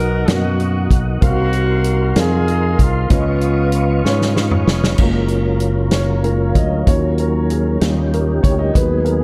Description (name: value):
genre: slow gospel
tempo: 64 BPM (dotted quarters)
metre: 6/8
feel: straight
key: F# major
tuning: A4 = 440 Hz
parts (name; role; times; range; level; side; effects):
- warm horn section; melody; 0.0-4.3 s; G#3 to A#4; -24 LUFS; equal; tape echo
- dark upright piano; accompaniment; 0.0-9.2 s; B2 to E#5; -24 LUFS; equal; none
- tonewheel organ; sustained chords; 0.0-9.2 s; D#3 to C#6; -26 LUFS; equal; fast rotary speaker, chorus vibrato
- fingered electric bass; bass; 0.0-9.2 s; E#1 to G#2; -20 LUFS; equal; none
- natural country drum kit; drums; 0.3-9.2 s; crash cymbal, hi-hat, kick drum, snare drum, toms; -20 LUFS; equal; none
room: light reverb, small room ambience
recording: dark, warm production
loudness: -16 LUFS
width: mono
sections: 0.0-5.0 A section; 5.0-9.2 B section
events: drum fill 4.0-5.0; upright piano solo 5.0-9.2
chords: 0.0 Bmaj7; 1.2 G#13/B#; 3.1 C#9; 5.0 F#maj7; 6.9 D#m7; 7.8 D#7